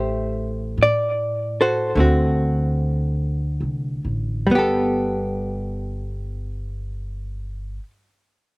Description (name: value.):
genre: jazz ballad.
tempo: 44-53 BPM.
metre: 4/4.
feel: swing 68% on 8ths.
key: G major.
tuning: A4 = 439 Hz.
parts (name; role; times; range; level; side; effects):
hollow-body jazz guitar; accompaniment; 0.0-7.9 s; D3 to E5; -20 LUFS; equal; none.
upright bass; bass; 0.0-7.8 s; G1 to A2; -26 LUFS; equal; none.
room: little or no reverb.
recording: recorded outdoors, with no room sound.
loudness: -20 LUFS.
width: side -26 dB against mid.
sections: 0.0-4.5 A section; 4.5-8.6 B section.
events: slowing down 0.0-4.5.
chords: 0.0 Am7; 1.9 D7; 4.5 Gadd9.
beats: 0.77 1.95 3.18 | 4.49 5.84 7.18.